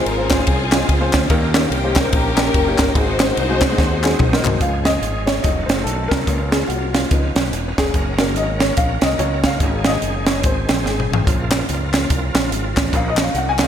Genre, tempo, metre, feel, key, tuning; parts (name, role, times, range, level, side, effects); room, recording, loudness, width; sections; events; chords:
uptempo gospel; 144 BPM; 4/4; swing 60% on 8ths; Db major; A4 = 442 Hz
dark studio string section; melody; 0.0-4.4 s; C4 to C5; -22 LUFS; left 3 dB; digital delay
warm upright piano; accompaniment; 0.0-13.7 s; Ab2 to Ab5; -23 LUFS; left 3 dB; analog chorus
bright tonewheel organ; sustained chords; 0.0-13.7 s; Db3 to Bb4; -28 LUFS; right 3 dB; slow rotary speaker, chorus vibrato
modern bright fingered electric bass; bass; 0.1-13.7 s; Fb1 to Eb2; -23 LUFS; equal
crisp fusion drum kit; drums; 0.1-13.7 s; hi-hat, kick drum, ride cymbal, snare drum, toms; -18 LUFS; right 1 dB; gated reverb
group handclap; percussion; 0.3-4.5, 11.5-13.7 s; -28 LUFS; left 5 dB
moderate lush hall reverb, RT60 2.2 s; bright 1980s-style digital production; -15 LUFS; side -9 dB against mid
0.0-4.6 A section; 4.6-13.7 B section
drum fill 3.8-4.6, 10.9-11.3; upright piano solo 4.6-13.7
0.0 Dbmaj7; 1.3 Eb7; 3.0 Ab7; 4.6 Db; 5.4 F7b9; 6.3 Bbm/Db; 7.1 Db9; 7.9 Gb; 9.6 Absus4; 10.4 Ab; 11.3 Bbm; 12.9 Ebm/Bb